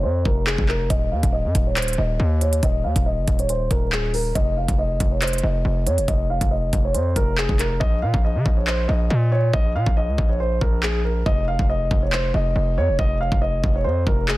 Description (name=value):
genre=hip hop, drill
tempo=139 BPM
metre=4/4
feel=half-time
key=F minor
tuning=A4 = 440 Hz
part: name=dark baby grand piano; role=melody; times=0.0-14.4 s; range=Ab4 to F5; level=-25 LUFS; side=equal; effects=low-pass filter, digital delay
part: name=distorted 808-style bass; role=bass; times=0.0-14.4 s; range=Eb1 to Db3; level=-22 LUFS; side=equal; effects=distortion
part: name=drill drum kit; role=drums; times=0.3-14.4 s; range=handclaps, hi-hat, kick drum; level=-22 LUFS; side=equal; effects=none
room=digital ambience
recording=dense, heavily limited modern master, vinyl crackle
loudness=-18 LUFS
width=side -17 dB against mid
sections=0.0-14.4 A section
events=break 0.0-0.9; filter sweep on grand piano 0.0-7.8; hi-hats muted 7.8-14.4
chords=0.0 Fm; 0.9 N.C.; 4.4 F7(no3); 7.8 N.C.; 11.3 F7(no3)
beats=0.04 0.47 | 0.90 1.33 1.76 2.20 | 2.63 3.06 3.49 3.92 | 4.36 4.79 5.22 5.65 | 6.08 6.51 6.95 7.38 | 7.81 8.24 8.67 9.10 | 9.54 9.97 10.40 10.83 | 11.26 11.69 12.12 12.56 | 12.99 13.42 13.85 14.28